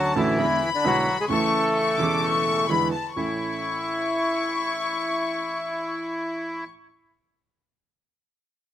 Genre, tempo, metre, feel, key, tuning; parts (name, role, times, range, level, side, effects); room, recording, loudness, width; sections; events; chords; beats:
tango; 130 BPM; 4/4; rubato; A major; A4 = 441 Hz
bandoneon; melody; 0.0-6.6 s; D3 to A4; -25 LUFS; equal
warm symphonic violin section; second line; 0.0-6.6 s; A5 to D6; -27 LUFS; left 6 dB; slapback echo
clear concert grand piano; accompaniment; 0.0-6.6 s; E1 to F#4; -27 LUFS; right 4 dB
little or no reverb; recorded outdoors, with no room sound; -22 LUFS; side -11 dB against mid
0.0-3.2 A section; 3.2-6.8 B section
0.4 E7; 1.3 A; 2.7 E7; 3.2 A
0.38 0.84 | 1.30 1.76 2.23 2.69 | 3.16 3.62 4.08 4.54 | 5.00 5.45 5.92 6.38